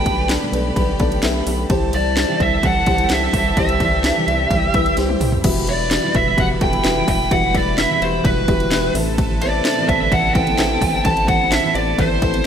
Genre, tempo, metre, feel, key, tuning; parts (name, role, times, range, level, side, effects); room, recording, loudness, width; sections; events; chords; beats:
piano-driven pop; 128 BPM; 4/4; straight; E minor; A4 = 440 Hz
fuzz lead guitar; melody; 0.0-12.5 s; B4 to A5; -20 LUFS; right 1 dB; distortion
warm studio violin section; second line; 0.0-12.5 s; G4 to C6; -28 LUFS; equal
dark upright piano; accompaniment; 0.0-12.5 s; A2 to G5; -24 LUFS; left 4 dB; lush chorus
clear studio string section; sustained chords; 0.0-12.5 s; C3 to B4; -31 LUFS; left 1 dB
fingerpicked steel-string acoustic guitar; riff; 0.0-12.5 s; E2 to G4; -26 LUFS; right 5 dB; analog chorus
round analog bass; bass; 0.0-12.4 s; E1 to C2; -23 LUFS; equal
house drum kit; drums; 0.1-12.4 s; crash cymbal, handclaps, hi-hat, kick drum, ride cymbal, snare drum, toms; -20 LUFS; equal; overdrive
light reverb, studio reverb; bright 1980s-style digital production; -15 LUFS; side -8 dB against mid
0.0-5.4 A section; 5.4-12.5 A section
drum fill 5.0-5.4
0.0 Gadd9/B; 1.7 C; 5.4 Emadd9; 8.9 Amadd9
0.29 0.76 1.23 | 1.70 2.17 2.63 3.10 | 3.57 4.04 4.51 4.97 | 5.44 5.91 6.38 6.84 | 7.31 7.78 8.25 8.72 | 9.18 9.65 10.12 10.59 | 11.05 11.52 11.99 12.46